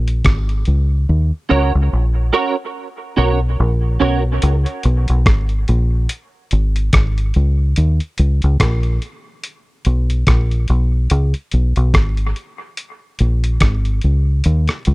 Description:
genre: dub reggae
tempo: 72 BPM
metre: 4/4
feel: swing 58% on 16ths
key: unclear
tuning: A4 = 438 Hz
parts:
  - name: deep dub fingered electric bass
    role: bass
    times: 0.0-14.9 s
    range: G#1 to D#2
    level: -14 LUFS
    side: equal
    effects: none
  - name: dusty soul sampler-style drum kit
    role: drums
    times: 0.1-14.9 s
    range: hi-hat, kick drum, rim click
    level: -17 LUFS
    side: equal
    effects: none
  - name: clean electric guitar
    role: accompaniment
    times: 1.5-4.2 s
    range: C#4 to C#5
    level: -19 LUFS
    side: right 4 dB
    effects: ensemble chorus, dub echo
room: little or no reverb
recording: dry, close 1970s-style studio recording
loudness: -14 LUFS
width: side -21 dB against mid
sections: 0.0-4.4 A section; 4.4-14.9 A section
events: break 0.0-1.1; part muted 1.1-4.4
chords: 0.0 C#5; 1.1 D#m7 (rootless); 4.4 C#5; 7.8 N.C.; 11.1 C#5; 14.4 D#5

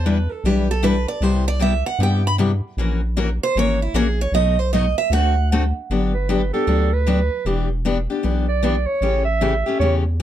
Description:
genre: acoustic string swing (jazz manouche)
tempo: 154 BPM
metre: 4/4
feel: swing 64% on 8ths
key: E minor, G major from 5.9 s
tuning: A4 = 440 Hz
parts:
  - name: picked steel-string acoustic guitar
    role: melody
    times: 0.0-5.5 s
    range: E4 to B5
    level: -23 LUFS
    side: right 6 dB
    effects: none
  - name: round analog bass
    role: bass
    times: 0.0-10.2 s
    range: E1 to G2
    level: -20 LUFS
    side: equal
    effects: none
  - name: picked steel-string acoustic guitar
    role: accompaniment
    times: 0.1-10.2 s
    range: B2 to B4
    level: -21 LUFS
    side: left 4 dB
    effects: none
  - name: warm clarinet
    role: second line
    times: 6.1-9.9 s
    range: G4 to E5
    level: -22 LUFS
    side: right 5 dB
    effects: none
room: light reverb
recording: dark, warm production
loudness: -17 LUFS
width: side -11 dB against mid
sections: 0.0-5.9 A section; 5.9-10.2 A section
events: steel-string acoustic guitar solo 0.0-5.9; clarinet solo 5.9-10.2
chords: 0.0 Em7; 1.2 Cmaj7; 2.8 F#7/A#; 4.3 B7; 5.1 D7; 5.9 Gmaj9; 7.5 Em7; 9.0 A7

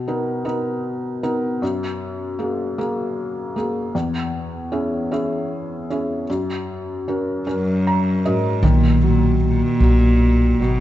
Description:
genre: acoustic folk-pop ballad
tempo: 51 BPM (dotted quarters)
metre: 6/8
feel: straight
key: B major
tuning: A4 = 445 Hz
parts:
  - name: felt-muted upright piano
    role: accompaniment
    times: 0.0-10.8 s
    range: E2 to A#5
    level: -22 LUFS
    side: equal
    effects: none
  - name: warm cello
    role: melody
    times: 7.5-10.8 s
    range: F#2 to B2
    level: -18 LUFS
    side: equal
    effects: none
  - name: upright bass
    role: bass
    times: 8.6-10.8 s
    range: G#1 to B1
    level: -16 LUFS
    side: equal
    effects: none
room: light reverb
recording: dark, warm production, nothing above 7.8 kHz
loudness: -18 LUFS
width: side -13 dB against mid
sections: 0.0-8.6 A section; 8.6-10.8 B section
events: none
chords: 0.0 Bmaj7; 1.6 F#add9; 3.9 E6; 6.3 F#; 8.6 Bmaj7

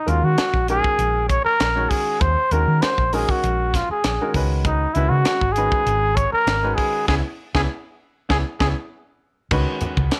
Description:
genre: electric jazz fusion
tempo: 98 BPM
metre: 4/4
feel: straight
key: unclear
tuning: A4 = 440 Hz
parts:
  - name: breathy trumpet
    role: melody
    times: 0.0-8.7 s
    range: D#4 to C#5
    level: -23 LUFS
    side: equal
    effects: slapback echo
  - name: warm baby grand piano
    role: accompaniment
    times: 0.1-10.2 s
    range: D#3 to C#5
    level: -30 LUFS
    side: equal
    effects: none
  - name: hollow-body short-scale fingered electric bass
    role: bass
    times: 0.1-10.1 s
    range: G#1 to D#3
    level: -24 LUFS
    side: equal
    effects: none
  - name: tight funk drum kit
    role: drums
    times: 0.1-10.2 s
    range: crash cymbal, hi-hat, kick drum, snare drum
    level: -26 LUFS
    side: equal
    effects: none
  - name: congas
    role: percussion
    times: 9.8-10.1 s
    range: none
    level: -29 LUFS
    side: equal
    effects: none
room: light reverb, small room ambience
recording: none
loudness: -20 LUFS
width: mono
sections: 0.0-9.5 A section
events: band accent 7.1-9.5; drum fill 8.9-9.5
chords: 0.0 D#m7; 4.3 C#9sus4

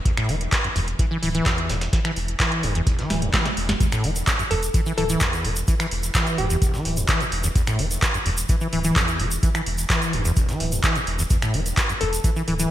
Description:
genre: acid house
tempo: 128 BPM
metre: 4/4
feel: straight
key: E minor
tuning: A4 = 440 Hz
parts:
  - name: acid bass, saw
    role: riff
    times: 0.1-12.7 s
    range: E1 to E3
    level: -25 LUFS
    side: equal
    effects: tube saturation, analog chorus, digital delay
  - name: booming analog drum machine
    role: drums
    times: 0.1-12.7 s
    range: finger snaps, handclaps, hi-hat, snare drum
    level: -25 LUFS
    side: right 1 dB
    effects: overdrive, gated reverb
  - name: breakbeat sampler-style drum kit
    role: drums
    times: 0.1-12.7 s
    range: hi-hat, snare drum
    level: -37 LUFS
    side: right 1 dB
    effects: none
  - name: electronic kick drum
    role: drums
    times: 0.1-12.3 s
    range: none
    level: -22 LUFS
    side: equal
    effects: overdrive
  - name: saturated sub bass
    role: bass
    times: 0.3-12.7 s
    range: D1 to E1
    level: -27 LUFS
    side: equal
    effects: tube saturation, sidechain pumping
  - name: tube shaker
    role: percussion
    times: 3.8-12.7 s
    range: none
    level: -32 LUFS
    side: right 1 dB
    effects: none
  - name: hollow square pluck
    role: melody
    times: 4.5-6.9, 12.0-12.2 s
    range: G4 to A4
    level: -29 LUFS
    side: left 2 dB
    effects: chorus, digital delay
room: moderate lush hall reverb, RT60 1.7 s, digital ambience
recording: bright 1980s-style digital production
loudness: -20 LUFS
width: side -12 dB against mid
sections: 0.0-12.7 A section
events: filter sweep on acid bass 0.0-12.7; drum fill 3.1-3.8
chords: 0.0 E7(no3)

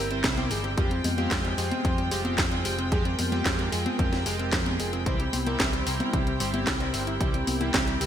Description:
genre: italo disco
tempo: 112 BPM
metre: 4/4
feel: straight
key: F harmonic minor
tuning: A4 = 440 Hz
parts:
  - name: soft octave-layered synth lead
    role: melody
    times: 0.0-8.1 s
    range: C4 to C5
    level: -33 LUFS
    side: equal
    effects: chorus, ping-pong delay, shimmer reverb
  - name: warm studio string section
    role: sustained chords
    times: 0.0-8.1 s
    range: Ab3 to G5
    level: -33 LUFS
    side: equal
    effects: shimmer reverb
  - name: analog pluck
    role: arpeggios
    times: 0.0-8.1 s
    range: E3 to G4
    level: -38 LUFS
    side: left 4 dB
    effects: chorus, ping-pong delay, shimmer reverb
  - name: chorused polysynth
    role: stabs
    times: 0.0-8.1 s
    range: G3 to C5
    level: -34 LUFS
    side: right 4 dB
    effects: cassette tape, shimmer reverb
  - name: hollow-body short-scale fingered electric bass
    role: bass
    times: 0.0-8.1 s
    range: F1 to F2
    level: -31 LUFS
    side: equal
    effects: none
  - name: house drum kit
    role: drums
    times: 0.1-8.1 s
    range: congas, handclaps, hi-hat, snare drum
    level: -29 LUFS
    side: left 1 dB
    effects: gated reverb
  - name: electronic kick drum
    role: drums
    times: 0.2-7.8 s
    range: none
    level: -29 LUFS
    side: equal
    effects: none
room: moderate lush hall reverb, RT60 2.5 s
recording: bright 1980s-style digital production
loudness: -24 LUFS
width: side -10 dB against mid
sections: 0.0-8.1 A section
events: none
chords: 0.0 C; 0.8 Fmadd9; 5.1 C

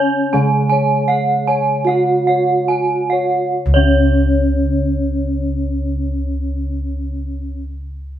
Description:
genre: Javanese gamelan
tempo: 34-42 BPM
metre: 4/4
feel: straight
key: unclear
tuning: A4 = 440 Hz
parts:
  - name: gamelan-type bronze metallophone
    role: melody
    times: 0.0-7.6 s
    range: Db4 to Ab4+25c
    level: -20 LUFS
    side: equal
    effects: none
  - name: gamelan-type bronze metallophone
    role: accompaniment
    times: 0.0-7.6 s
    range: Db3 to Ab3+25c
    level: -28 LUFS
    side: right 3 dB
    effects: none
  - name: gamelan-type bossed gongs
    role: arpeggios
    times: 0.0-7.6 s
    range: Db5 to Ab5+25c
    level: -24 LUFS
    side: left 6 dB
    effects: none
  - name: gamelan-type bronze metallophone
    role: arpeggios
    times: 0.0-7.6 s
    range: Db5 to Ab5+25c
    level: -19 LUFS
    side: right 2 dB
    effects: none
  - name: gamelan-type bossed gongs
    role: bass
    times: 0.0-7.5 s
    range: Db2 to Eb4+30c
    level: -20 LUFS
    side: equal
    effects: none
room: moderate stone room reverb, RT60 1.1 s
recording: band playing live in one room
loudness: -14 LUFS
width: side -11 dB against mid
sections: 0.0-3.6 A section; 3.6-8.2 B section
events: slowing down 0.0-3.6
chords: none

